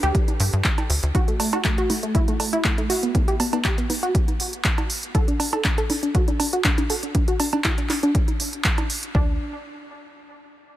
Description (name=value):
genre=progressive house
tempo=120 BPM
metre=4/4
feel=straight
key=unclear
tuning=A4 = 439 Hz
part: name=wide unison pluck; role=arpeggios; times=0.0-9.3 s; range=A3 to A4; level=-25 LUFS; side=equal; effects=sidechain pumping, dub echo
part: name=tight sequencer bass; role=bass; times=0.0-1.1, 9.1-9.4 s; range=D2 to G2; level=-22 LUFS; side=equal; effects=sidechain pumping
part: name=deep house drum kit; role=drums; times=0.0-9.1 s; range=handclaps, hi-hat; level=-26 LUFS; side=equal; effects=none
part: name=electronic kick drum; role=drums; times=0.1-9.3 s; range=none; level=-22 LUFS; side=equal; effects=none
part: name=congas and cowbell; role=percussion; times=0.3-8.9 s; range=none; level=-30 LUFS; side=right 4 dB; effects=sidechain pumping on perc
room=digital ambience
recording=none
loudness=-19 LUFS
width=side -14 dB against mid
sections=0.0-9.1 A section; 9.1-10.8 B section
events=filter sweep on synth pluck 0.0-9.1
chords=0.0 G5/D; 1.1 N.C.